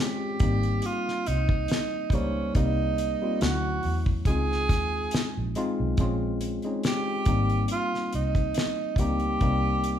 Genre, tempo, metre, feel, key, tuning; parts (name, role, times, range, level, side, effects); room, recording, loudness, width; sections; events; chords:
R&B, neo-soul; 70 BPM; 4/4; swing 54% on 16ths; A4 = 441 Hz
warm tenor saxophone; melody; 0.0-10.0 s; Db4 to Ab4; -29 LUFS; right 3 dB; slapback echo
barky tine electric piano; accompaniment; 0.0-10.0 s; F#3 to C5; -30 LUFS; left 2 dB; overdrive
vintage muted fingered electric bass; bass; 0.4-10.0 s; Ab1 to E2; -28 LUFS; equal
damped 70s drum kit; drums; 0.4-10.0 s; hi-hat, kick drum, snare drum; -27 LUFS; equal
moderate large studio reverb, RT60 0.9 s; band playing live in one room; -24 LUFS; side -9 dB against mid
0.0-10.0 A section
0.4 Abmaj7; 2.5 Cm7; 3.4 Dmaj9; 4.3 Dbmaj9; 6.0 Bbm7; 7.3 Abmaj7; 9.4 Cm7